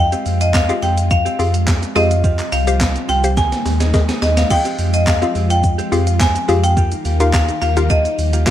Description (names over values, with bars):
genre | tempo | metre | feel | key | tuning
dance-pop | 106 BPM | 4/4 | straight | F minor | A4 = 440 Hz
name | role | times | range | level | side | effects
marimba with hard mallets | melody | 0.0-8.5 s | Eb5 to Ab5 | -20 LUFS | left 1 dB | ping-pong delay
hollow square pluck | accompaniment | 0.0-8.5 s | C4 to F5 | -21 LUFS | left 3 dB | chorus, sidechain pumping
string machine, cellos | sustained chords | 0.0-8.5 s | Eb3 to G5 | -26 LUFS | equal | ensemble chorus, sidechain pumping
bell-like tine electric piano | arpeggios | 0.0-8.5 s | Eb3 to F5 | -30 LUFS | left 4 dB | sidechain pumping, ping-pong delay
warm sub bass | bass | 0.0-8.5 s | C2 to F2 | -17 LUFS | equal | sidechain pumping
direct-recorded clean electric guitar | riff | 0.1-8.5 s | Ab3 to Ab4 | -29 LUFS | right 9 dB | lush chorus
gated 80s digital drum machine | drums | 0.1-8.5 s | crash cymbal, handclaps, hi-hat, kick drum, shaker, snare drum | -19 LUFS | equal | gated reverb, gated reverb snare
room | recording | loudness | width
light reverb, digital ambience | rough home demo mix | -13 LUFS | side -11 dB against mid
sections
0.0-4.5 A section; 4.5-8.5 A section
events
drum fill 3.4-4.5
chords
0.0 Fmadd9; 2.2 Csus4; 3.4 Ebsus4; 4.5 Fmadd9; 6.8 Ebadd9